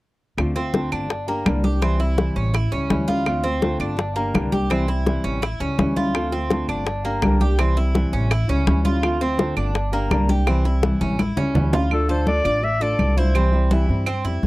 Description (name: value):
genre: latin, Cuban son and guajira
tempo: 166 BPM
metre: 4/4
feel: straight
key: D minor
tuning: A4 = 440 Hz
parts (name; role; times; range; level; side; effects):
- nylon-string guitar; accompaniment; 0.4-14.5 s; C3 to G4; -25 LUFS; left 1 dB; none
- upright bass; bass; 0.4-14.5 s; G1 to G2; -22 LUFS; equal; none
- bongos; percussion; 0.4-11.8 s; none; -26 LUFS; left 4 dB; none
- claves; percussion; 0.4-14.2 s; none; -30 LUFS; right 7 dB; none
- congas; percussion; 0.4-14.5 s; none; -24 LUFS; left 1 dB; none
- Cuban tres; arpeggios; 0.6-14.5 s; Bb3 to D5; -27 LUFS; right 2 dB; none
- clear clarinet; melody; 11.9-13.7 s; A4 to E5; -23 LUFS; left 1 dB; none
room: light reverb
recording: dry, close 1970s-style studio recording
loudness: -18 LUFS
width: side -19 dB against mid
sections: 0.4-11.9 A section; 11.9-14.5 B section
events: drum fill 10.8-11.9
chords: 0.4 Dm7; 1.1 Gm; 1.8 C; 2.5 A7; 3.3 Dm7; 4.0 Gm; 4.7 C; 5.4 A7; 6.1 Dm7; 6.9 Gm; 7.6 C; 8.3 A7; 9.0 Dm7; 9.8 Gm; 10.5 C; 11.2 A7; 11.9 Dm; 13.3 C